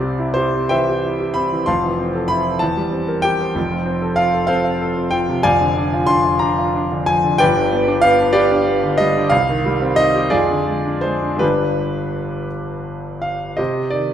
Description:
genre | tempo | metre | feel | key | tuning
classical, romantic character piece for solo piano | 54-65 BPM (dotted quarters) | 6/8 | rubato | unclear | A4 = 440 Hz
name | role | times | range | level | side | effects
clear concert grand piano | solo | 0.0-14.1 s | F1 to C6 | -15 LUFS | equal | none
room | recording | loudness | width
wet recital hall reverb, RT60 1.5 s | none | -15 LUFS | side -9 dB against mid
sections
0.0-13.6 A section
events
none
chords
0.0 C; 1.7 Fmaj7; 2.6 C7/E; 3.6 F; 5.4 Ddim/F; 7.4 G; 9.3 Cm; 10.3 Ddim/F; 11.4 G; 13.6 Cm

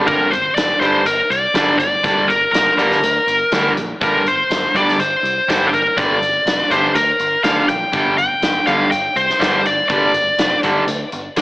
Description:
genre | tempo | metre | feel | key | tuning
hard rock | 122 BPM | 4/4 | straight | G minor | A4 = 440 Hz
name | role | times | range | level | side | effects
cranked stack guitar | riff | 0.0-11.4 s | G2 to G3 | -19 LUFS | right 1 dB | overdrive
picked electric bass | bass | 0.0-11.4 s | F1 to D2 | -30 LUFS | equal | none
high-gain lead guitar | melody | 0.1-10.6 s | G4 to G5 | -16 LUFS | left 1 dB | distortion
big rock drum kit | drums | 0.1-11.4 s | hi-hat, kick drum, snare drum | -22 LUFS | equal | none
room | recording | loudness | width
moderate large studio reverb, RT60 1.1 s, small room ambience | AM radio sound | -13 LUFS | side -20 dB against mid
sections
0.1-11.4 A section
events
none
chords
0.1 Gm

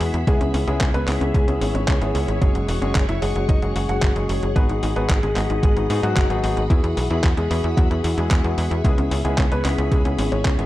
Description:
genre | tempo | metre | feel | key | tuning
italo disco | 112 BPM | 4/4 | straight | C# minor | A4 = 440 Hz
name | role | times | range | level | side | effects
warm baby grand piano | melody | 0.0-10.7 s | E3 to F#5 | -27 LUFS | left 1 dB | tape echo
phased string machine | sustained chords | 0.0-10.7 s | G#4 to C#6 | -30 LUFS | left 1 dB | ensemble chorus, phaser
barky tine electric piano | stabs | 0.0-10.7 s | G#3 to G#4 | -26 LUFS | left 3 dB | none
tight sequencer bass | bass | 0.0-10.7 s | E1 to G#2 | -22 LUFS | equal | none
clean 12-bit digital drum machine | drums | 0.0-10.7 s | handclaps, hi-hat | -29 LUFS | equal | studio reverb
electronic kick drum | drums | 0.3-10.6 s | none | -19 LUFS | equal | studio reverb
room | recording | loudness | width
light reverb, digital ambience | dark, warm production | -18 LUFS | side -16 dB against mid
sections
0.0-10.7 A section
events
none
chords
0.3 C#m7; 2.4 F#sus2; 4.6 G#m7; 6.7 Eadd9; 8.8 C#m7

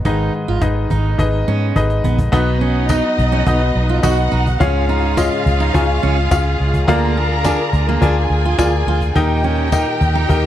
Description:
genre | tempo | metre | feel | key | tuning
piano-driven pop | 106 BPM | 4/4 | straight | unclear | A4 = 440 Hz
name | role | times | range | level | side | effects
clear grand piano | accompaniment | 0.0-10.5 s | Ab2 to Ab5 | -19 LUFS | left 3 dB | none
vintage muted fingered electric bass | bass | 0.0-10.5 s | Ab1 to Ab2 | -17 LUFS | equal | none
warm studio string section | sustained chords | 0.1-10.5 s | Db3 to Bb4 | -28 LUFS | right 1 dB | none
fingerpicked steel-string acoustic guitar | riff | 0.1-10.4 s | Bb3 to Gb4 | -23 LUFS | right 8 dB | none
cajon | drums | 0.1-10.4 s | none | -20 LUFS | equal | none
warm studio violin section | second line | 2.3-10.5 s | Eb4 to Bb5 | -22 LUFS | left 1 dB | tape echo
tambourine | percussion | 2.9-9.9 s | none | -32 LUFS | left 8 dB | none
room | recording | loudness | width
studio ambience | dark, warm production | -14 LUFS | side -12 dB against mid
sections
0.0-2.3 A section; 2.3-10.5 B section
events
drum fill 1.8-2.3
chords
0.0 Abm; 2.3 Cb; 4.6 Db; 6.9 Bb7/D; 9.2 Eb

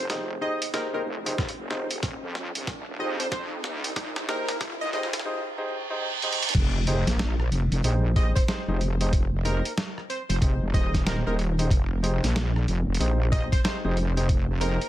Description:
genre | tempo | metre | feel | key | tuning
glitch hop | 93 BPM | 4/4 | swing 62% on 16ths | F minor | A4 = 441 Hz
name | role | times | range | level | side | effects
plucky unison lead | melody | 0.0-14.9 s | Bb4 to Eb5 | -34 LUFS | right 1 dB | ping-pong delay
wobble bass | bass | 0.0-14.8 s | Eb1 to F2 | -26 LUFS | equal | chorus, overdrive, high-pass filter
riser, reverse cymbal and impact | sound effects | 0.0-9.1 s | none | -34 LUFS | right 3 dB | none
warm grand piano | stabs | 0.1-14.8 s | Eb4 to C5 | -33 LUFS | equal | sidechain pumping, ping-pong delay
boom bap sampler-style drum kit | drums | 0.1-14.9 s | crash cymbal, hi-hat, rim click, snare drum | -31 LUFS | equal | high-pass filter on hats, high-pass filter on snare, high-pass filter on cymbals, high-pass filter on room
electronic kick drum | drums | 1.4-14.5 s | none | -24 LUFS | equal | none
room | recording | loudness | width
little or no reverb | high-pass filter | -24 LUFS | side -14 dB against mid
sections
0.0-6.5 A section; 6.5-14.9 B section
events
build-up 0.0-6.5; drum fill 0.0-5.3, 6.2-6.5; riser 0.0-5.3; filter sweep 0.0-6.5; reverse cymbal 5.3-6.5; drop 6.5-14.9; impact 6.5-9.1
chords
0.0 Fm7

